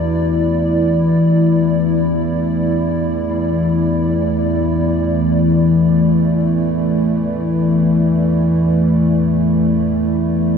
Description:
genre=dark ambient drone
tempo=free time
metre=none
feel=none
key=unclear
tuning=A4 = 440 Hz
part: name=dark analog pad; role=sustained chords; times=0.0-10.6 s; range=E3 to D5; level=-16 LUFS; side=equal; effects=chorus
part: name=quartz singing bowl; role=arpeggios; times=0.0-9.3 s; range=E3 to B3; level=-28 LUFS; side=left 2 dB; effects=none
part: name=analog drone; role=drone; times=0.0-10.6 s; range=E2 to E3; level=-17 LUFS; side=left 1 dB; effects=chorus
room=wet huge ambient reverb, RT60 7.7 s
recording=none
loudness=-13 LUFS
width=side -6 dB against mid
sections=0.0-10.6 A section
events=filter sweep on synth drone 0.0-10.6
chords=0.0 Dsus2/E

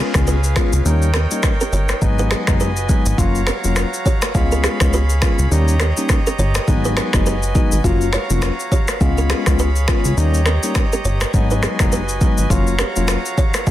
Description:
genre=afrobeats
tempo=103 BPM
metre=4/4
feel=swing 58% on 16ths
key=Db mixolydian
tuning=A4 = 438 Hz
part: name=tine electric piano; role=accompaniment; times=0.0-13.7 s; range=Gb3 to F4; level=-23 LUFS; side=left 5 dB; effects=phaser
part: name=pipe organ, cornet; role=sustained chords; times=0.0-13.7 s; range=Db4 to Cb6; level=-26 LUFS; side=right 2 dB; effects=none
part: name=kalimba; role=riff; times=0.0-13.5 s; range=Cb4 to Db5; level=-27 LUFS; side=right 3 dB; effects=tape echo
part: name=plucky analog bass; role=bass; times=0.1-13.7 s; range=F1 to Eb2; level=-18 LUFS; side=equal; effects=none
part: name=afro-pop drum kit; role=drums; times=0.1-13.7 s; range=finger snaps, kick drum, rim click, shaker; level=-18 LUFS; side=equal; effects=soft clipping on snare
room=little or no reverb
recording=dense, heavily limited modern master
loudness=-15 LUFS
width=side -13 dB against mid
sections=0.0-13.7 A section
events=none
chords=0.0 Db7; 0.9 Eb7; 2.0 Abm7; 3.2 Gbmaj7; 4.3 Db7; 5.5 Eb7; 6.7 Abm7; 7.8 Gbmaj7; 9.0 Db7; 10.2 Eb7; 11.3 Abm7; 12.5 Gbmaj7

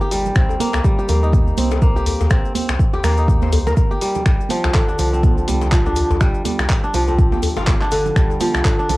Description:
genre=afro house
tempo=123 BPM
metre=4/4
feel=swing 57% on 16ths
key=C minor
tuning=A4 = 440 Hz
part: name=kora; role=arpeggios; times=0.0-9.0 s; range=D3 to C5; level=-21 LUFS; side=equal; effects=sidechain pumping, tape echo
part: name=round analog bass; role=bass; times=0.0-9.0 s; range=G1 to Eb2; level=-20 LUFS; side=equal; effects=sidechain pumping
part: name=maracas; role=percussion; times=0.0-9.0 s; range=none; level=-40 LUFS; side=left 11 dB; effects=none
part: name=deep house drum kit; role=drums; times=0.1-9.0 s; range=finger snaps, handclaps, hi-hat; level=-25 LUFS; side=equal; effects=cassette tape
part: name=djembe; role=percussion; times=0.1-9.0 s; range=none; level=-27 LUFS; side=left 3 dB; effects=none
part: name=congas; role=percussion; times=0.3-9.0 s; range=none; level=-27 LUFS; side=right 9 dB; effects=none
part: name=electronic kick drum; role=drums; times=0.4-8.8 s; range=none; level=-16 LUFS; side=equal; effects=cassette tape
room=little or no reverb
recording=home recording on cassette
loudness=-14 LUFS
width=side -19 dB against mid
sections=0.0-9.0 A section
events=none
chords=0.0 Cm7; 4.3 G5

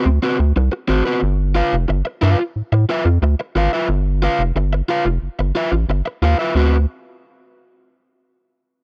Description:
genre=funk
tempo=90 BPM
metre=4/4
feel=straight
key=unclear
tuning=A4 = 438 Hz
part: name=overdriven electric guitar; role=accompaniment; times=0.0-6.8 s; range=C4 to F5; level=-22 LUFS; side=equal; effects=tube saturation
part: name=rubbery square bass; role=bass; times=0.1-6.9 s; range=F1 to A2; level=-18 LUFS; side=equal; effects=none
room=little or no reverb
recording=dry, close 1970s-style studio recording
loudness=-18 LUFS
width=mono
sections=0.0-6.5 A section; 6.5-8.8 B section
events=none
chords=0.0 D6; 1.2 G13; 6.5 D6

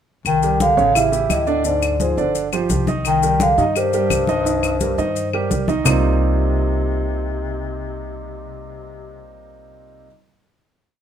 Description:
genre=Afro-Cuban jazz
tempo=171 BPM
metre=4/4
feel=straight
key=C minor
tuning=A4 = 440 Hz
part: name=upright bass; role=bass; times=0.2-10.1 s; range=G1 to G2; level=-23 LUFS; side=left 1 dB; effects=none
part: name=vibraphone with soft mallets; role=melody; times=0.3-10.1 s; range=C5 to G5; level=-21 LUFS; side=equal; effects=none
part: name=warm bass clarinet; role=second line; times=0.3-9.4 s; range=G2 to Eb3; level=-26 LUFS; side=left 8 dB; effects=none
part: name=claves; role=percussion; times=0.3-5.9 s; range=none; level=-26 LUFS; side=left 7 dB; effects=none
part: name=congas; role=percussion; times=0.3-5.9 s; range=none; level=-25 LUFS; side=left 4 dB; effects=none
part: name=maracas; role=percussion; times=0.3-5.9 s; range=none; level=-30 LUFS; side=left 9 dB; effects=none
part: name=warm grand piano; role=accompaniment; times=0.4-10.1 s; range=C3 to Eb5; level=-22 LUFS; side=right 7 dB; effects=none
room=light reverb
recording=minimal, uncompressed stereo recording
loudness=-16 LUFS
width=side -9 dB against mid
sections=0.3-5.9 A section; 5.9-8.7 final chord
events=none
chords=0.3 Cm11; 0.9 A7; 1.6 Dm7b5; 2.3 G5; 3.0 Cm7

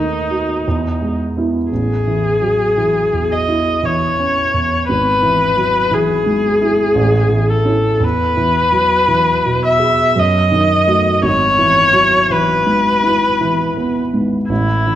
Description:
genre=classical, romantic duo for viola and grand piano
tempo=56 BPM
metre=3/4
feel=rubato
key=E major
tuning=A4 = 440 Hz
part: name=rich viola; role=melody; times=0.0-15.0 s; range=D#4 to E5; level=-14 LUFS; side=left 1 dB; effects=none
part: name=warm grand piano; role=accompaniment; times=0.0-15.0 s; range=G#1 to G#4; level=-17 LUFS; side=right 1 dB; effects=none
room=wet recital hall reverb, RT60 1.8 s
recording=dark, warm production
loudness=-12 LUFS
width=side -12 dB against mid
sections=0.0-15.0 A section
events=none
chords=0.0 B7/D#; 0.7 E; 1.7 Amaj7; 4.9 E/G#; 7.0 A; 8.0 E; 10.2 D#dim/F#; 11.3 E/G#

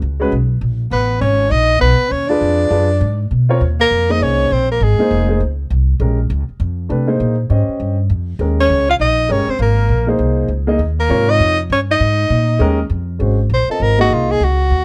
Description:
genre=modal jazz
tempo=200 BPM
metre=4/4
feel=swing 62% on 8ths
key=Eb mixolydian from 3.6 s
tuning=A4 = 441 Hz
part: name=upright bass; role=bass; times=0.0-14.8 s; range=F1 to C3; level=-18 LUFS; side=equal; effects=none
part: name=warm concert grand piano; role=accompaniment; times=0.2-14.4 s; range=C3 to Eb5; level=-21 LUFS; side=equal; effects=none
part: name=breathy soprano saxophone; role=melody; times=0.9-5.4, 8.6-14.8 s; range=F4 to F5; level=-18 LUFS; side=equal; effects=none
part: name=breathy alto saxophone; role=second line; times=0.9-5.4, 8.6-12.9 s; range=Ab3 to F4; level=-25 LUFS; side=equal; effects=none
room=little or no reverb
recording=close, detailed microphones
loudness=-16 LUFS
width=mono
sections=0.0-3.6 A section; 3.6-13.2 B section; 13.2-14.8 C section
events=soprano saxophone solo 13.2-14.8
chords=0.0 Db7sus2; 2.4 Bb7b9 (rootless); 3.6 Eb9sus4; 13.2 Ab9sus4

